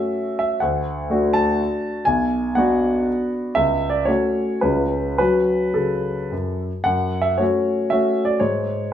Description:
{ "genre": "classical, romantic triple-time dance for piano with dotted rhythms", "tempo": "103-134 BPM", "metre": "3/4", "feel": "rubato", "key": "F# minor", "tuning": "A4 = 440 Hz", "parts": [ { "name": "clear grand piano", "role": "solo", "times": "0.0-8.9 s", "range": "B1 to A5", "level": "-18 LUFS", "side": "equal", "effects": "none" } ], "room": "wet large studio reverb, RT60 1.4 s", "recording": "minimal, uncompressed stereo recording", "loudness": "-18 LUFS", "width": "side -10 dB against mid", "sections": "0.0-6.9 A section; 6.9-8.9 A section", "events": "none", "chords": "0.0 F#m; 0.6 D; 2.1 Bm; 3.6 F#m/C#; 4.6 C#7; 5.2 F#m; 8.4 C#5/G#" }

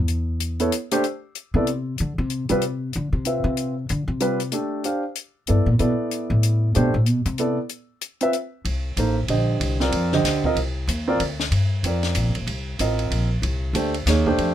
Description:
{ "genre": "modal jazz", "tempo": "189 BPM", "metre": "3/4", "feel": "swing 61% on 8ths", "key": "D dorian, C dorian from 8.7 s", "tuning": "A4 = 439 Hz", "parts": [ { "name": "upright bass", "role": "bass", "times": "0.0-14.5 s", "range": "Eb1 to D3", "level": "-22 LUFS", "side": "left 1 dB", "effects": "none" }, { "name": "compact cocktail drum kit", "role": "drums", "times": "0.1-14.5 s", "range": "hi-hat, kick drum, ride cymbal, snare drum", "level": "-29 LUFS", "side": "left 2 dB", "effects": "none" }, { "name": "warm grand piano", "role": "accompaniment", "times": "0.6-14.5 s", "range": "D3 to F5", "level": "-22 LUFS", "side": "right 2 dB", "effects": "none" } ], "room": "little or no reverb", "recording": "minimal, uncompressed stereo recording", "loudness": "-20 LUFS", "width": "side -11 dB against mid", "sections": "0.0-1.0 A section; 1.0-8.7 A section; 8.7-14.5 B section", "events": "upright bass solo 0.0-8.7", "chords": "0.1 A5; 1.0 Dm9; 4.8 C; 8.7 Cm11; 12.5 F" }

